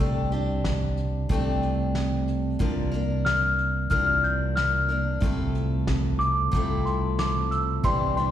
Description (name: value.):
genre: acoustic folk duo or small band.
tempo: 92 BPM.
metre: 4/4.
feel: straight.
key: unclear.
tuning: A4 = 440 Hz.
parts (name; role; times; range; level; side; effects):
worn celesta; melody; 0.0-8.3 s; C6 to G6; -25 LUFS; left 2 dB; plate reverb, slapback echo.
picked steel-string acoustic guitar; accompaniment; 0.0-8.3 s; C3 to Bb4; -30 LUFS; left 4 dB; plate reverb, slapback echo.
mellow fretless electric bass; bass; 0.0-8.3 s; C2; -26 LUFS; right 2 dB; none.
vintage brush drum kit; drums; 0.3-8.3 s; hi-hat, kick drum, snare drum; -29 LUFS; equal; none.
clear upright piano; arpeggios; 7.8-8.3 s; E3 to G4; -33 LUFS; right 6 dB; plate reverb, slapback echo.
room: light reverb.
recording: live gig heard through the venue's PA, recital hall reverb.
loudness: -22 LUFS.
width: side -11 dB against mid.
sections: 0.0-8.3 A section.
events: celesta solo 0.0-8.3.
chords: 0.0 Gsus2/C; 2.6 Bb/C; 5.2 Fmaj7/C.